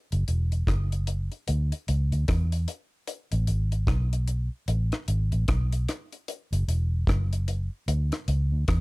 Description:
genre	roots reggae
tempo	75 BPM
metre	4/4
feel	swing 60% on 16ths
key	unclear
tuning	A4 = 443 Hz
part	vintage muted fingered electric bass	bass	0.1-8.8 s	E1 to E2	-24 LUFS	equal	none
part	deep reggae drum kit	drums	0.1-8.8 s	hi-hat, kick drum, rim click	-29 LUFS	equal	none
room	little or no reverb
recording	dark, warm production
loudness	-24 LUFS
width	side -24 dB against mid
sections	0.0-8.8 A section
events	none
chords	none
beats	0.68 1.48 2.28 | 3.08 3.88 4.68 5.48 | 6.28 7.08 7.88 8.68

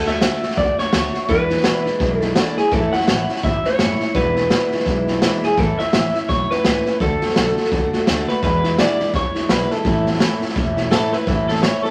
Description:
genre	rockabilly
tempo	168 BPM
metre	4/4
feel	swing 59% on 8ths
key	A major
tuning	A4 = 440 Hz
part	electric guitar through a small old amp	melody	0.0-11.9 s	G#4 to F#5	-23 LUFS	equal	none
part	picked old ladder-braced acoustic guitar	accompaniment	0.0-11.9 s	E2 to F#4	-25 LUFS	equal	none
part	upright bass	bass	0.0-11.9 s	E1 to E2	-28 LUFS	equal	none
part	raw garage drum kit	drums	0.1-11.9 s	hi-hat, kick drum, snare drum	-22 LUFS	equal	none
room	moderate studio reverb, RT60 0.6 s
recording	vinyl crackle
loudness	-18 LUFS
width	mono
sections	0.0-11.3 A section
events	none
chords	0.0 D; 1.3 E7; 2.7 A; 4.1 E7; 5.6 A; 7.0 D; 8.4 E7; 9.9 A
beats	0.22 0.58 0.94 | 1.29 1.65 2.01 2.36 | 2.72 3.08 3.44 3.79 | 4.15 4.51 4.86 5.22 | 5.58 5.93 6.29 6.65 | 7.00 7.36 7.72 8.07 | 8.43 8.79 9.14 9.50 | 9.85 10.21 10.56 10.92 | 11.27 11.63

